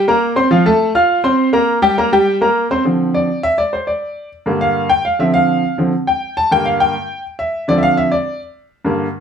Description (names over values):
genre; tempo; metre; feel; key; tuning
latin; 205 BPM; 4/4; straight; D minor; A4 = 442 Hz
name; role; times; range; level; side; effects
bright baby grand piano; solo; 0.0-9.1 s; G2 to F6; -13 LUFS; equal; none
room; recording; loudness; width
wet studio reverb, RT60 0.6 s; heard from further back in the room; -13 LUFS; side -7 dB against mid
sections
0.0-2.9 A section; 2.9-9.2 B section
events
grand piano solo 2.9-9.2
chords
0.0 N.C.; 0.5 Fadd11; 1.7 Gm; 2.9 Dm7; 4.0 Gm; 5.2 Dm7; 6.4 Gm; 7.5 Dm7